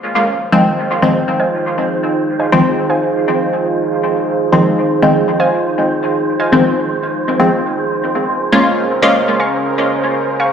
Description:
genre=dub techno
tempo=120 BPM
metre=4/4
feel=straight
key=F minor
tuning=A4 = 440 Hz
part: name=deep dark ambient pad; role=sustained chords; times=0.5-10.5 s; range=Db4 to Bb4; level=-18 LUFS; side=right 2 dB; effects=chorus, built-in reverb
part: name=wind-like tuned noise texture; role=texture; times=0.4-10.5 s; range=C5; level=-22 LUFS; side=right 2 dB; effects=built-in reverb
part: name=filtered dub chord stab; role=stabs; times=0.5-9.2 s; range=Eb3 to F4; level=-14 LUFS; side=left 1 dB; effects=chorus, phaser, dub echo
part: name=warbly dusty pluck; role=riff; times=1.4-10.5 s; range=C5 to Db6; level=-21 LUFS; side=equal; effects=chorus, dub echo
room=wet spring reverb, RT60 2.2 s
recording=played on a big sound system in a bare room, large studio reverb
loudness=-12 LUFS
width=side -7 dB against mid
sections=0.0-10.5 A section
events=none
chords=0.0 Fm7; 7.6 Bbm7

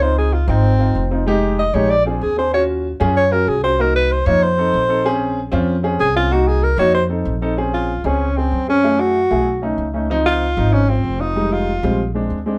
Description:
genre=Afro-Cuban jazz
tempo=190 BPM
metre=4/4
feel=straight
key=Bb minor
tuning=A4 = 442 Hz
part: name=breathy alto saxophone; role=melody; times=0.0-12.2 s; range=C4 to Eb5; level=-20 LUFS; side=equal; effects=none
part: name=warm baby grand piano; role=accompaniment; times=0.0-12.6 s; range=F3 to A4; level=-23 LUFS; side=equal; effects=none
part: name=upright bass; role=bass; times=0.0-12.6 s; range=F1 to Gb2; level=-22 LUFS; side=equal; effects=none
room=moderate small room reverb, RT60 0.6 s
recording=band playing live in one room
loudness=-17 LUFS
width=mono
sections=0.0-7.6 A section; 7.6-12.6 B section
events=alto saxophone solo 0.0-7.6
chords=0.0 Dbmaj9; 1.3 Fm7; 1.9 Bb7; 2.5 Ebm9; 3.8 Cm7b5; 4.4 F7; 5.1 Bbm9; 6.3 Cm7b5; 6.9 F7; 7.6 Bbm9; 8.8 Gbm7; 9.5 B9; 10.1 Dbmaj9; 11.4 Fm7; 12.0 Bb7

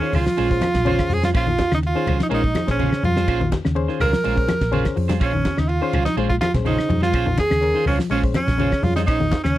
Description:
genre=afrobeat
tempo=124 BPM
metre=4/4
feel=straight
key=Bb minor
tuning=A4 = 442 Hz
part: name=edgy tenor saxophone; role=melody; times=0.0-9.6 s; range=Db4 to Bb4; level=-24 LUFS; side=equal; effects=none
part: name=trombone with bucket mute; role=second line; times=0.0-9.6 s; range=Db4 to Bb4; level=-25 LUFS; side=right 5 dB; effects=none
part: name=barky reed electric piano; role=accompaniment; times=0.0-9.0 s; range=Db4 to Db5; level=-27 LUFS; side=left 6 dB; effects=none
part: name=electric guitar at the edge of break-up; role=arpeggios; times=0.0-9.6 s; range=Db3 to Ab3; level=-27 LUFS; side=left 5 dB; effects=none
part: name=clean electric guitar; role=stabs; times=0.0-9.6 s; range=Db4 to C5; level=-28 LUFS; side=right 10 dB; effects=none
part: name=damped 70s drum kit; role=drums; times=0.0-9.6 s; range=hi-hat, kick drum, ride cymbal, snare drum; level=-24 LUFS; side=equal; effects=none
part: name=hollow-body short-scale fingered electric bass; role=bass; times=0.1-9.6 s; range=Bb1 to F2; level=-23 LUFS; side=equal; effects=none
part: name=claves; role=percussion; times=0.1-9.6 s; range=none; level=-37 LUFS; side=left 7 dB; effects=none
part: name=congas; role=percussion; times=0.1-9.4 s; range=none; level=-27 LUFS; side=left 2 dB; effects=none
room=little or no reverb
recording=dry, close 1970s-style studio recording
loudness=-17 LUFS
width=side -14 dB against mid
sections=0.0-9.6 A section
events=drum fill 4.8-5.2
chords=0.0 Bbm9

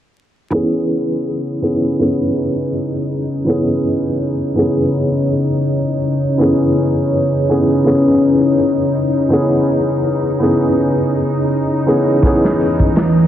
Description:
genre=trip hop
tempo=82 BPM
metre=4/4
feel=swing 54% on 16ths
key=C# minor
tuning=A4 = 440 Hz
part: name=felt-muted upright piano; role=accompaniment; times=0.5-13.3 s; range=E3 to G#4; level=-16 LUFS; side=equal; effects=harmonic tremolo, vintage 12-bit sampler grit, low-pass filter, tape echo
part: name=dark analog pad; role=sustained chords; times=1.1-13.3 s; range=E3 to C#5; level=-17 LUFS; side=left 1 dB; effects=chorus
part: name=bowed-like drone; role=texture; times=1.3-13.3 s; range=D#4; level=-25 LUFS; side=right 1 dB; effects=built-in reverb
part: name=egg shaker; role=percussion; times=1.3-13.1 s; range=none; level=-67 LUFS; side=equal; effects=none
part: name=crunchy breakbeat drum kit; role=drums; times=12.2-13.2 s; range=hi-hat, kick drum, snare drum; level=-16 LUFS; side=equal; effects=none
room=wet lush hall reverb, RT60 2.8 s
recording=dreamy mix soaked in reverb, vinyl crackle, low-pass filter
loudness=-13 LUFS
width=side -11 dB against mid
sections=0.5-13.3 A section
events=filter sweep on felt piano 0.5-13.3; filter sweep on analog synth pad 0.5-13.3; filter sweep 0.5-13.3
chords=0.5 C#m7

